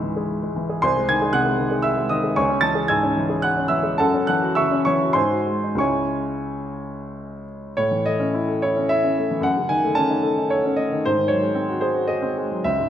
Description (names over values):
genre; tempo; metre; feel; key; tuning
classical, romantic character piece for solo piano; 88-118 BPM; 3/4; rubato; C# minor; A4 = 440 Hz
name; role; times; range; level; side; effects
clear grand piano; solo; 0.0-12.9 s; B#1 to A6; -19 LUFS; equal; none
room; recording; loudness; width
moderate recital hall reverb, RT60 1.5 s; none; -19 LUFS; side -10 dB against mid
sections
0.0-7.8 A section; 7.8-12.9 B section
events
none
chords
0.0 C#m; 0.8 G#/B#; 2.4 C#m; 4.0 F#m7; 5.1 G#7; 5.8 C#m; 7.8 A; 9.4 D#m7b5/F#; 11.0 G#7